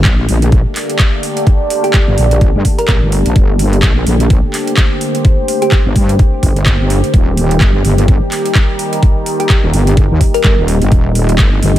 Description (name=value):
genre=bass house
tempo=127 BPM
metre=4/4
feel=swing 58% on 16ths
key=G minor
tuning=A4 = 442 Hz
part: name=sweeping resonant pad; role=sustained chords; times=0.0-11.8 s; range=D3 to G4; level=-20 LUFS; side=equal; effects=chorus, sidechain pumping
part: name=wobble bass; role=bass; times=0.0-11.8 s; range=Eb1 to G2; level=-12 LUFS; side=equal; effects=chorus, overdrive, sidechain pumping
part: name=garage drum kit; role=drums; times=0.0-11.8 s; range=handclaps, hi-hat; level=-19 LUFS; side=right 1 dB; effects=overdrive
part: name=deep dark ambient pad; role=texture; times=0.0-11.8 s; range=G4 to C6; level=-20 LUFS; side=right 1 dB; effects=chorus, built-in reverb, sidechain pumping
part: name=electronic kick drum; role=drums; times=0.1-11.5 s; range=none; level=-11 LUFS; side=equal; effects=overdrive
part: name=thumb-piano-like synth pluck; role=melody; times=1.8-5.8, 9.4-10.5 s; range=G4 to Bb4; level=-20 LUFS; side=equal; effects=chorus, phaser, cassette tape, ping-pong delay
room=digital ambience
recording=none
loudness=-9 LUFS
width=side -13 dB against mid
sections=0.0-11.8 A section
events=none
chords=0.0 Gmadd9; 7.1 Eb